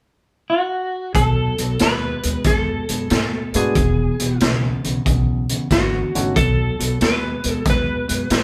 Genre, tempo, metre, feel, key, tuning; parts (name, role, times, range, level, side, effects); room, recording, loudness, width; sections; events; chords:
electric blues shuffle; 92 BPM; 4/4; swing 67% on 8ths; B mixolydian; A4 = 440 Hz
clean lap steel guitar; melody; 0.5-8.4 s; F#4 to B4; -25 LUFS; equal
semi-hollow electric guitar; riff; 1.1-8.4 s; E2 to A3; -27 LUFS; equal
upright bass; bass; 1.1-8.4 s; E1 to G#2; -25 LUFS; equal
raw garage drum kit; drums; 1.1-8.4 s; hi-hat, kick drum, snare drum; -23 LUFS; equal
dark upright piano; accompaniment; 3.5-6.3 s; G#3 to F#4; -25 LUFS; equal
light reverb; band playing live in one room; -19 LUFS; mono
0.0-1.2 A section; 1.2-8.4 B section
0.0 N.C.; 1.2 B7; 3.8 E9; 6.4 B7